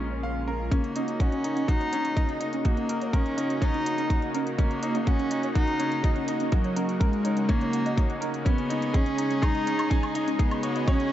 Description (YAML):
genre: piano and strings electronica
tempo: 124 BPM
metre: 4/4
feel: straight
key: Eb minor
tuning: A4 = 438 Hz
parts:
  - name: warm cello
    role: melody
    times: 0.0-11.1 s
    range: Gb3 to Eb4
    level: -28 LUFS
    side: equal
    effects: none
  - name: lush unison pad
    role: sustained chords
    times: 0.0-11.1 s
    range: Db3 to Ab4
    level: -33 LUFS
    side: left 1 dB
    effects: chorus
  - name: bright grand piano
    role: riff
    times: 0.0-11.1 s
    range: Db4 to Ab5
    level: -33 LUFS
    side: left 1 dB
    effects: none
  - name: dark detuned saw bass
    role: bass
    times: 0.0-0.7 s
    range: Bb1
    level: -33 LUFS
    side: equal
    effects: sidechain pumping
  - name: soft round pluck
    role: arpeggios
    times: 0.1-11.0 s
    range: Db4 to Gb5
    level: -35 LUFS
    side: right 2 dB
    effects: none
  - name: electronic hi-hat and woodblock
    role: drums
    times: 0.7-11.1 s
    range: none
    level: -39 LUFS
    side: equal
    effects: none
  - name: electronic kick drum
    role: drums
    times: 0.7-11.0 s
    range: none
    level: -24 LUFS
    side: equal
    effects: none
room: light reverb, digital ambience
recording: dark, warm production, nothing above 7.9 kHz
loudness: -23 LUFS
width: side -12 dB against mid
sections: 0.7-11.1 A section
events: build-up 0.7-11.1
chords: 0.0 Bbm7; 0.7 Ebm7; 8.5 Dbsus2